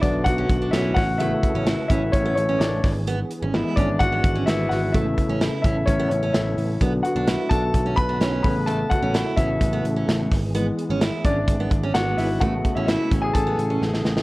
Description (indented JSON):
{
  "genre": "piano-driven pop",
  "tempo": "128 BPM",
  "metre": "4/4",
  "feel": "straight",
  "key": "A major",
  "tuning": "A4 = 437 Hz",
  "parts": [
    { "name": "warm grand piano", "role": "accompaniment", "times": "0.0-14.2 s", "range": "C#3 to B5", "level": "-24 LUFS", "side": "left 2 dB", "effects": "none" },
    { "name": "percussive tonewheel organ", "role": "sustained chords", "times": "0.0-14.2 s", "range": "C#3 to A4", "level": "-32 LUFS", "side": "right 1 dB", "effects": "none" },
    { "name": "picked steel-string acoustic guitar", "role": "riff", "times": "0.0-13.8 s", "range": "A3 to E4", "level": "-30 LUFS", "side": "right 4 dB", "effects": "none" },
    { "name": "picked electric bass", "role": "bass", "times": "0.0-14.2 s", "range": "G#1 to B1", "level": "-26 LUFS", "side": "equal", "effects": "none" },
    { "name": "modern studio drum kit", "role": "drums", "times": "0.0-14.2 s", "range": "hi-hat, kick drum, snare drum", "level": "-23 LUFS", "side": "equal", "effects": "none" },
    { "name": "impact", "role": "sound effects", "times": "0.0-1.2 s", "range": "none", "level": "-39 LUFS", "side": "right 1 dB", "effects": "none" }
  ],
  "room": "light reverb",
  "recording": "worn, warbling old tape, cassette tape, warbly pitch drift",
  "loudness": "-19 LUFS",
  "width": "side -20 dB against mid",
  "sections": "0.0-14.2 A section",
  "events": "impact 0.0-1.2; grand piano solo 0.0-14.2; drum fill 13.8-14.2",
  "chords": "0.0 Bm; 1.0 Aadd9; 2.8 E/G#; 4.9 Aadd9; 6.8 Bm; 8.4 Aadd9; 10.3 E/G#; 12.4 Aadd9",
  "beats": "0.26 0.73 | 1.20 1.67 2.14 2.60 | 3.07 3.54 4.01 4.47 | 4.94 5.41 5.88 6.34 | 6.81 7.28 7.75 8.21 | 8.68 9.15 9.62 10.08 | 10.55 11.02 11.48 11.95 | 12.42 12.88 13.35 13.82"
}